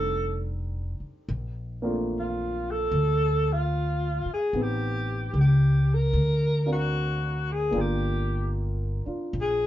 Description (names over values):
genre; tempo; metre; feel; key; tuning
jazz ballad; 74 BPM; 4/4; swing 66% on 8ths; Bb major; A4 = 440 Hz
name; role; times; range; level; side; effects
breathy alto saxophone; melody; 0.0-9.7 s; F4 to Bb4; -28 LUFS; equal; none
dark grand piano; accompaniment; 0.0-9.7 s; G3 to G5; -33 LUFS; right 1 dB; none
upright bass; bass; 0.0-9.7 s; F1 to D2; -26 LUFS; equal; none
room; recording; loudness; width
moderate studio ambience, RT60 0.5 s; band playing live in one room, nothing above 7.6 kHz; -24 LUFS; side -13 dB against mid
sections
0.0-1.3 A section; 1.3-9.7 B section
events
alto saxophone solo 1.3-9.7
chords
0.0 F13; 1.3 Bbmaj9; 4.5 Am7b5; 6.1 D7alt; 7.7 Gm7